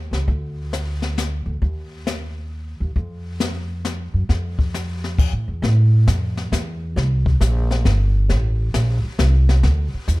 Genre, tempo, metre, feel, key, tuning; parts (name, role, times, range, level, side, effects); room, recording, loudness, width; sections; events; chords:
jazz piano trio; 135 BPM; 3/4; swing 66% on 8ths; A4 = 440 Hz
upright bass; bass; 0.0-10.2 s; G1 to A2; -19 LUFS; equal
jazz brush drum kit; drums; 0.1-10.2 s; brushed snare drum, crash cymbal, hi-hat, kick drum, snare drum; -23 LUFS; left 2 dB
little or no reverb; dark, warm production; -18 LUFS; side -20 dB against mid
0.0-5.6 A section; 5.6-10.2 B section